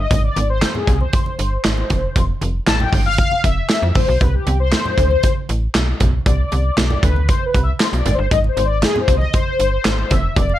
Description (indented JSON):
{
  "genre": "early-eighties boogie funk",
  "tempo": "117 BPM",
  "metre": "4/4",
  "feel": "straight",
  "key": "unclear",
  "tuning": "A4 = 439 Hz",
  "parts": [
    { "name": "mellow synth brass", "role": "accompaniment", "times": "0.0-10.6 s", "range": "G4 to A5", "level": "-21 LUFS", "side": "left 4 dB", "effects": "chorus, phaser" },
    { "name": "slap-like FM bass", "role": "bass", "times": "0.0-10.6 s", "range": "F1 to F2", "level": "-19 LUFS", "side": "equal", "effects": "none" },
    { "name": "modern studio drum kit", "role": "drums", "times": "0.1-10.5 s", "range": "handclaps, hi-hat, kick drum, snare drum", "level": "-18 LUFS", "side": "right 1 dB", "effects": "gated reverb" },
    { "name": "congas", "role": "percussion", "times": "0.1-10.6 s", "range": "none", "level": "-27 LUFS", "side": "right 2 dB", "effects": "none" }
  ],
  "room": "small room ambience",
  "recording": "none",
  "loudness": "-15 LUFS",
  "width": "side -13 dB against mid",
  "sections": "0.0-10.6 A section",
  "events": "analog polysynth solo 0.0-10.6",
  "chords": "0.0 Ab; 1.9 Fmaj9; 4.2 Csus2; 8.1 Abmaj7",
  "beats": "| 0.11 0.62 1.13 1.65 | 2.16 2.67 3.19 3.70 | 4.21 4.72 5.24 5.75 | 6.26 6.78 7.29 7.80 | 8.31 8.83 9.34 9.85 | 10.37"
}